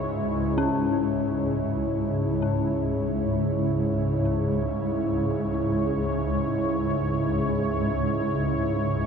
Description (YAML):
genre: dark ambient drone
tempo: free time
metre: none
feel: none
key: C# minor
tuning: A4 = 440 Hz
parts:
  - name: sweeping resonant pad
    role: sustained chords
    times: 0.0-9.1 s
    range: C#3 to C#5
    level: -26 LUFS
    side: equal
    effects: chorus
  - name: swarming drone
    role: drone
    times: 0.0-9.1 s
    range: C#2 to G#2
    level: -27 LUFS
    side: equal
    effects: built-in reverb
  - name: bronze singing bowl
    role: texture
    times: 0.0-0.6 s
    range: none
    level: barely audible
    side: none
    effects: none
  - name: dark detuned synth bell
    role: arpeggios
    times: 0.6-9.1 s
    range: C#4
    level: -32 LUFS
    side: left 5 dB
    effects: chorus, ping-pong delay
room: wet cathedral reverb, RT60 6.6 s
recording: none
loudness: -23 LUFS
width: side -6 dB against mid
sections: 0.6-9.1 A section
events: none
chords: 0.0 C#m